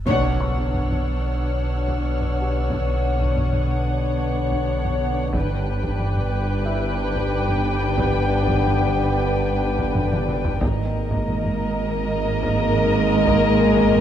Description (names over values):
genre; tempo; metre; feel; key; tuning
cinematic, suspense film score; 91 BPM; 4/4; straight; B minor; A4 = 441 Hz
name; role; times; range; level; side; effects
sub bass with octave; drone; 0.0-14.0 s; G1 to B1; -26 LUFS; equal; none
felt-muted upright piano; texture; 0.0-14.0 s; E4 to C#6; -38 LUFS; left 3 dB; none
muted chamber violin section; melody; 0.1-14.0 s; D#5 to G5; -30 LUFS; left 1 dB; none
muted chamber violin section; second line; 0.1-14.0 s; A#4 to C#5; -29 LUFS; left 4 dB; none
muted symphonic viola section; accompaniment; 0.1-14.0 s; A#3 to D4; -30 LUFS; right 2 dB; none
dark French horn section; sustained chords; 0.1-14.0 s; G#3 to C#5; -28 LUFS; left 5 dB; none
glass harmonica; sustained chords; 0.1-14.0 s; A#4 to A#5; -33 LUFS; equal; none
mellow trombone section; sustained chords; 0.1-14.0 s; D3 to B3; -28 LUFS; right 3 dB; none
muted chamber cello section; bass; 0.1-14.0 s; G2 to B2; -30 LUFS; right 2 dB; none
muted chamber double bass section; bass; 0.1-14.0 s; G1 to B1; -28 LUFS; right 3 dB; none
taiko ensemble; drums; 0.1-14.0 s; none; -28 LUFS; equal; none
timpani; percussion; 0.1-1.0 s; B2; -32 LUFS; left 1 dB; none
impact; sound effects; 0.1-2.7 s; none; -32 LUFS; equal; none
muted chamber violin section; texture; 0.1-10.2 s; B5 to F#6; -38 LUFS; right 2 dB; none
room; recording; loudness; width
moderate scoring stage reverb, RT60 1.8 s; none; -19 LUFS; side -10 dB against mid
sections
0.1-14.0 A section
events
band accent 0.1-0.7; impact 0.1-2.7; drum fill 10.0-10.6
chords
0.1 Bmadd9; 5.3 G; 10.6 G#sus2